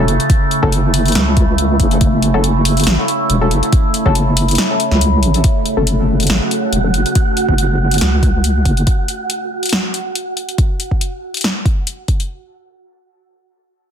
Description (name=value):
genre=deep dubstep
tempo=140 BPM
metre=4/4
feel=swing 54% on 16ths, half-time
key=F# minor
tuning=A4 = 440 Hz
part: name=overtone-sweeping drone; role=sustained chords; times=0.0-7.1 s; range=C#3 to F#4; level=-18 LUFS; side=right 1 dB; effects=chorus, built-in reverb, phaser
part: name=filtered dub chord stab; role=stabs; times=0.0-6.9 s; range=F#3 to A4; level=-23 LUFS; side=left 4 dB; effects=chorus, dub echo
part: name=deep soft wobble bass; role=bass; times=0.0-8.9 s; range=E1 to C#2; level=-14 LUFS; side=equal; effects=chorus
part: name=deep house drum kit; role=drums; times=0.1-12.3 s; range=hi-hat, snare drum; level=-19 LUFS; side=left 2 dB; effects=overdrive
part: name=electronic kick drum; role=drums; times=0.3-12.2 s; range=none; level=-15 LUFS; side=equal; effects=overdrive
part: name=wind-like tuned noise texture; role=texture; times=6.2-10.6 s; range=F#4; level=-22 LUFS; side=right 4 dB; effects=built-in reverb
room=light reverb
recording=dense, heavily limited modern master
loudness=-12 LUFS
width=side -8 dB against mid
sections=0.0-5.4 A section; 5.4-12.3 B section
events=drop 0.0-5.4; kick drops out 4.6-5.4; filter sweep on synth stab 5.4-7.2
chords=0.0 F#m